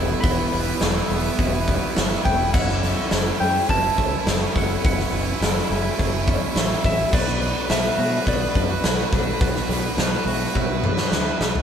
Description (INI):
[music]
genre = post-rock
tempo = 105 BPM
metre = 4/4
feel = straight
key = unclear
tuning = A4 = 440 Hz
[part]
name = clean lap steel guitar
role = melody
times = 0.0-11.1 s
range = D5 to B5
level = -26 LUFS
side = left 1 dB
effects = none
[part]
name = pedal harmonium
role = sustained chords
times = 0.0-11.6 s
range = E3 to A4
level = -35 LUFS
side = left 4 dB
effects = none
[part]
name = twangy electric guitar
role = arpeggios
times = 0.0-11.6 s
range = E2 to B4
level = -33 LUFS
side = left 3 dB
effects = none
[part]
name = vibraphone with soft mallets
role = arpeggios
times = 0.0-11.6 s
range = A4 to E5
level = -34 LUFS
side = left 1 dB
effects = none
[part]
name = fuzz guitar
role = riff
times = 0.0-11.6 s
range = B3 to B4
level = -28 LUFS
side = right 5 dB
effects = distortion
[part]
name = fingered electric bass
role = bass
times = 0.0-11.6 s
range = E1 to B2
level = -27 LUFS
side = equal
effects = none
[part]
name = huge arena drum kit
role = drums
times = 0.2-11.6 s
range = crash cymbal, hi-hat, kick drum, snare drum, toms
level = -22 LUFS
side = equal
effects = none
[sound]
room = moderate stone room reverb, RT60 1.1 s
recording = band playing live in one room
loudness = -19 LUFS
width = side -8 dB against mid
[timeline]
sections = 0.0-11.6 A section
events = drum fill 10.6-11.6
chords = 0.0 Em; 2.5 F#m7; 7.1 Bm7